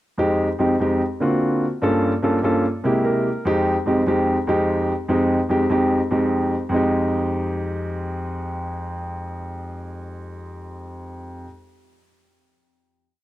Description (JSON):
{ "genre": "jazz", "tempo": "147 BPM", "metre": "4/4", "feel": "straight", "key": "F minor", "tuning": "A4 = 437 Hz", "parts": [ { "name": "warm concert grand piano", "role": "solo", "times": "0.2-11.5 s", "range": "F2 to Bb4", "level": "-19 LUFS", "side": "equal", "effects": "none" } ], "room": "little or no reverb", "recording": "dry, close 1970s-style studio recording", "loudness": "-19 LUFS", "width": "side -15 dB against mid", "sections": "0.2-6.7 A section; 6.7-10.0 final chord", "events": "grand piano fill 2.8-3.5", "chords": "0.2 Fm9; 1.0 D7alt; 1.8 Gm7b5; 2.6 C7b13; 3.5 Fm9" }